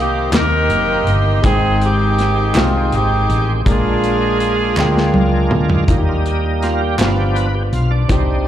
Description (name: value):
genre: slow gospel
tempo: 54 BPM (dotted quarters)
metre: 6/8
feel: straight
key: Eb major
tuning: A4 = 440 Hz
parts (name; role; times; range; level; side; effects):
- bright saxophone section; melody; 0.0-5.5 s; Bb3 to Bb4; -18 LUFS; right 2 dB; slapback echo
- dark baby grand piano; accompaniment; 0.0-8.5 s; G2 to G5; -21 LUFS; left 4 dB; slapback echo
- bright tonewheel organ; sustained chords; 0.0-8.5 s; Eb3 to G5; -22 LUFS; right 2 dB; overdrive, chorus vibrato, slow rotary speaker
- hollow-body short-scale fingered electric bass; bass; 0.0-8.5 s; Gb1 to Eb2; -18 LUFS; equal; none
- modern studio drum kit; drums; 0.3-8.3 s; hi-hat, kick drum, snare drum, toms; -18 LUFS; equal; none
- group handclap; percussion; 0.3-7.3 s; none; -26 LUFS; right 2 dB; none
room: light reverb, small room reverb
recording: live gig heard through the venue's PA, club reverb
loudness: -13 LUFS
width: side -11 dB against mid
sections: 0.0-5.9 A section; 5.9-8.5 B section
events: drum fill 4.8-5.9; tonewheel organ solo 5.9-8.5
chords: 0.0 Cm7; 1.4 Abmaj7; 3.7 Bb7; 5.9 Eb; 7.0 G7